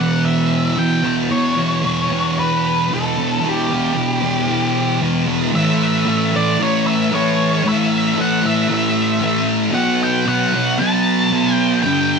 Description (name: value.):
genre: rock.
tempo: 114 BPM.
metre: 4/4.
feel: straight.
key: A mixolydian.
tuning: A4 = 440 Hz.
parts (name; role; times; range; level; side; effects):
octave-fuzz lead guitar; melody; 0.0-12.2 s; G4 to A5; -20 LUFS; equal; distortion, tape echo.
thick fuzz guitar; riff; 0.0-12.2 s; E2 to B3; -16 LUFS; equal; distortion, lush chorus.
room: light reverb, digital ambience.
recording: none.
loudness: -15 LUFS.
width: side -5 dB against mid.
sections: 0.0-5.5 A section; 5.5-12.2 B section.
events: none.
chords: 0.0 Em; 5.5 A5; 9.7 B5.